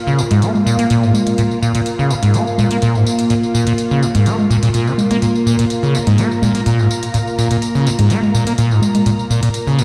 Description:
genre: acid house.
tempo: 125 BPM.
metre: 4/4.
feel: straight.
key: Bb minor pentatonic.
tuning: A4 = 440 Hz.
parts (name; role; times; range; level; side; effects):
string machine, full ensemble; sustained chords; 0.0-9.8 s; Bb3 to Bb5; -22 LUFS; equal; ensemble chorus.
acid bass, saw; riff; 0.1-9.8 s; Ab2 to Bb3; -17 LUFS; equal; overdrive, lush chorus, tape echo.
electronic tambourine, hi-hat and congas; drums; 0.1-9.8 s; none; -23 LUFS; equal; none.
room: moderate lush hall reverb, RT60 2.0 s.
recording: played on a big sound system in a bare room, stone room reverb.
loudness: -15 LUFS.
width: mono.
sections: 0.0-9.8 A section.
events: filter sweep on string machine 0.0-9.8.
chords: 0.0 Bb5.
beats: 0.42 0.90 | 1.38 1.86 2.34 2.82 | 3.30 3.78 4.26 4.74 | 5.22 5.70 6.18 6.66 | 7.14 7.62 8.10 8.58 | 9.06 9.54.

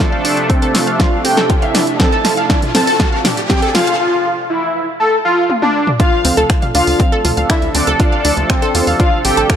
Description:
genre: melodic techno.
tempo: 120 BPM.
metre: 4/4.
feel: straight.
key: D minor.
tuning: A4 = 440 Hz.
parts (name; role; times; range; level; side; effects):
fat analog lead; melody; 0.0-9.5 s; C4 to A4; -17 LUFS; left 1 dB; ensemble chorus, sidechain pumping, analog delay.
dark studio violin section; second line; 0.0-9.5 s; C5 to A5; -22 LUFS; equal; sidechain pumping, low-pass filter, tape echo.
sweeping resonant pad; sustained chords; 0.0-9.6 s; C3 to A4; -21 LUFS; right 1 dB; chorus, sidechain pumping.
wide unison pluck; arpeggios; 0.0-9.6 s; C4 to F5; -19 LUFS; right 1 dB; sidechain pumping, tape echo.
electronic kick drum; drums; 0.0-9.6 s; none; -14 LUFS; equal; overdrive.
punchy analog drum machine; drums; 0.0-9.6 s; finger snaps, hi-hat, snare drum, toms; -18 LUFS; equal; overdrive.
riser; sound effects; 1.2-4.0 s; none; -24 LUFS; equal; none.
tight sequencer bass; bass; 6.2-9.4 s; A1 to E2; -18 LUFS; equal; sidechain pumping.
room: moderate lush hall reverb, RT60 1.9 s.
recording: dry, gritty hardware recording.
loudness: -11 LUFS.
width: side -9 dB against mid.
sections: 0.0-6.0 A section; 6.0-9.6 B section.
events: build-up 0.0-6.0; drum fill 0.0-4.0, 5.5-6.0; filter sweep on analog synth lead 0.0-6.0; riser 1.2-4.0; drop 6.0-9.6.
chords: 0.0 Dm7.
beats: | 0.00 0.50 1.00 1.50 | 2.00 2.50 3.00 3.50 | 4.00 4.50 5.00 5.50 | 6.00 6.50 7.00 7.50 | 8.00 8.50 9.00 9.50.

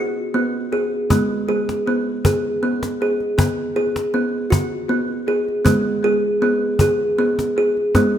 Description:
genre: world meditative, meditative tuned percussion.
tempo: 79 BPM.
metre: 3/4.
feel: swing 53% on 16ths.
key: G# minor pentatonic.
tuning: A4 = 440 Hz.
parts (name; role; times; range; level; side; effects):
kalimba; arpeggios; 0.0-8.2 s; G#3 to G#4; -18 LUFS; equal; tape echo.
cajon; percussion; 1.1-8.2 s; none; -20 LUFS; left 1 dB; none.
room: wet recital hall reverb, RT60 1.7 s, small room ambience.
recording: none.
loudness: -17 LUFS.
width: side -10 dB against mid.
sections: 0.0-8.2 A section.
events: none.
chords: 0.0 B5; 1.1 G#m; 3.4 B5; 5.7 G#m.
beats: 0.34 | 1.10 1.85 2.61 | 3.37 4.13 4.89 | 5.65 6.41 7.17 | 7.94.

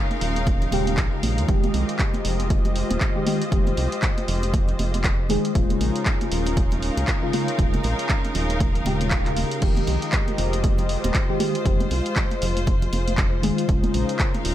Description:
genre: deep house.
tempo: 118 BPM.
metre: 4/4.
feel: swing 59% on 16ths.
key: F minor.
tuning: A4 = 437 Hz.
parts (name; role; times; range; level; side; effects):
warm analog pad; sustained chords; 0.0-14.5 s; Ab3 to Eb5; -31 LUFS; equal; chorus, sidechain pumping.
clear studio string section; texture; 0.0-14.5 s; Eb4 to F5; -30 LUFS; left 1 dB; sidechain pumping.
punchy analog drum machine; drums; 0.1-14.5 s; crash cymbal, handclaps, hi-hat; -30 LUFS; equal; studio reverb.
congas; percussion; 0.1-14.5 s; none; -31 LUFS; right 3 dB; none.
round analog bass; bass; 0.2-14.5 s; Eb1 to Eb2; -25 LUFS; equal; tube saturation, sidechain pumping.
electronic kick drum; drums; 0.5-14.3 s; none; -23 LUFS; equal; studio reverb.
mellow FM electric piano; stabs; 0.7-14.5 s; Db3 to Ab4; -27 LUFS; left 2 dB; chorus, phaser, sidechain pumping, low-pass filter, ping-pong delay.
swell; sound effects; 8.8-9.6 s; none; -34 LUFS; right 2 dB; none.
room: light reverb.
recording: none.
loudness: -20 LUFS.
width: side -12 dB against mid.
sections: 0.0-14.5 A section.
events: swell 8.8-9.6.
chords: 0.0 Eb9sus4; 1.5 Fm9; 5.6 Eb9sus4; 9.6 Fm9; 13.7 Eb9sus4.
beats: 0.47 0.98 | 1.49 1.99 2.50 3.01 | 3.52 4.03 4.54 5.04 | 5.55 6.06 6.57 7.08 | 7.59 8.10 8.60 9.11 | 9.62 10.13 10.64 11.15 | 11.65 12.16 12.67 13.18 | 13.69 14.20.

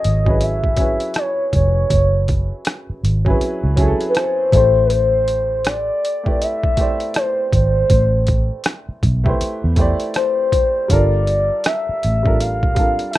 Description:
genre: R&B, neo-soul.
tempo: 80 BPM.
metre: 4/4.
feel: swing 60% on 16ths.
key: unclear.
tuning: A4 = 439 Hz.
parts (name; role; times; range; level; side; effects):
gliding portamento lead; melody; 0.0-13.2 s; B4 to F5; -18 LUFS; left 1 dB; chorus, phaser, slapback echo.
warm upright piano; accompaniment; 0.0-13.2 s; F#3 to D5; -25 LUFS; right 1 dB; none.
boom bap sampler-style drum kit; drums; 0.0-13.2 s; hi-hat, kick drum, rim click; -19 LUFS; equal; none.
vintage muted fingered electric bass; bass; 0.1-13.0 s; E#1 to E2; -18 LUFS; equal; none.
room: little or no reverb.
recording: rough home demo mix.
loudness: -15 LUFS.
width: side -15 dB against mid.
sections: 0.0-13.2 A section.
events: none.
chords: 0.0 F#m9; 4.5 Am9; 10.9 Gm9.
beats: 0.40 1.15 | 1.90 2.65 3.40 4.15 | 4.90 5.65 6.40 7.15 | 7.90 8.65 9.40 10.15 | 10.90 11.65 12.40 13.15.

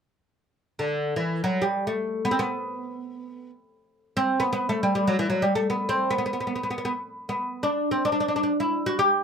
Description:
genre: arabic.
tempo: free time.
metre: none.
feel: none.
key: unclear.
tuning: A4 = 442 Hz.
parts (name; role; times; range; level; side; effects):
oud; melody; 0.8-9.2 s; D3 to G4; -23 LUFS; equal; none.
room: moderate studio reverb, RT60 0.5 s.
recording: none.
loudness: -23 LUFS.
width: side -6 dB against mid.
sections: 0.5-9.2 A section.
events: none.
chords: none.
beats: free time.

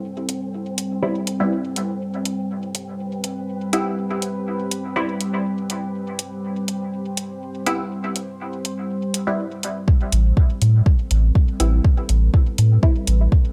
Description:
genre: dub techno.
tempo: 122 BPM.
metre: 4/4.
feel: straight.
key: A minor.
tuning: A4 = 441 Hz.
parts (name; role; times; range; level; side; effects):
deep dark ambient pad; sustained chords; 0.0-13.5 s; G3 to C5; -30 LUFS; equal; chorus, built-in reverb, sidechain pumping.
wind-like tuned noise texture; texture; 0.0-9.9 s; C4; -38 LUFS; equal; built-in reverb, sidechain pumping.
electronic hi-hat; drums; 0.3-13.2 s; none; -28 LUFS; equal; small room reverb.
filtered dub chord stab; stabs; 1.0-12.9 s; G3 to E4; -28 LUFS; equal; chorus, phaser, sidechain pumping, dub echo.
electronic kick drum; drums; 9.9-13.4 s; none; -18 LUFS; equal; small room reverb.
warm sub bass; bass; 10.1-13.3 s; A1 to A2; -17 LUFS; equal; sidechain pumping.
room: light reverb.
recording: echo-heavy mix.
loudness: -21 LUFS.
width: mono.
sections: 0.0-9.9 A section; 9.9-13.5 B section.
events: filter sweep on synth stab 9.9-13.5.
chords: 0.0 Am9.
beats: | 0.04 0.53 1.03 1.52 | 2.01 2.50 2.99 3.48 | 3.98 4.47 4.96 5.45 | 5.94 6.44 6.93 7.42 | 7.91 8.40 8.89 9.39 | 9.88 10.37 10.86 11.35 | 11.85 12.34 12.83 13.32.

